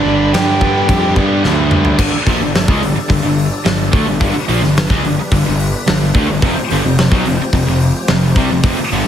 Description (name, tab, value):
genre	hard rock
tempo	108 BPM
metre	4/4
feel	straight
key	G mixolydian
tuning	A4 = 440 Hz
part	dark smooth lead guitar	melody	0.0-1.1 s	D5 to G5	-19 LUFS	right 1 dB	overdrive, digital delay
part	fuzz lead guitar	second line	0.0-1.1 s	D4 to G4	-21 LUFS	right 2 dB	distortion
part	overdriven tonewheel organ	sustained chords	0.0-9.1 s	F3 to B5	-26 LUFS	left 1 dB	slow rotary speaker, chorus vibrato
part	distorted electric guitar	riff	0.0-9.1 s	F2 to A3	-20 LUFS	left 7 dB	distortion
part	high-gain distorted guitar	riff	0.0-9.1 s	F2 to D4	-21 LUFS	equal	distortion
part	sludgy distorted guitar	riff	0.0-9.1 s	F2 to A3	-20 LUFS	right 7 dB	overdrive
part	fuzz fingered electric bass	bass	0.0-9.0 s	F1 to G2	-18 LUFS	equal	overdrive
part	big rock drum kit	drums	0.3-9.1 s	crash cymbal, hi-hat, kick drum, snare drum, toms	-16 LUFS	equal	none
room	light reverb, small room ambience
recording	heavily compressed radio sound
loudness	-11 LUFS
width	side -9 dB against mid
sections	0.0-2.0 A section; 2.0-9.1 B section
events	drum fill 1.4-2.0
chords	0.0 G; 6.4 F5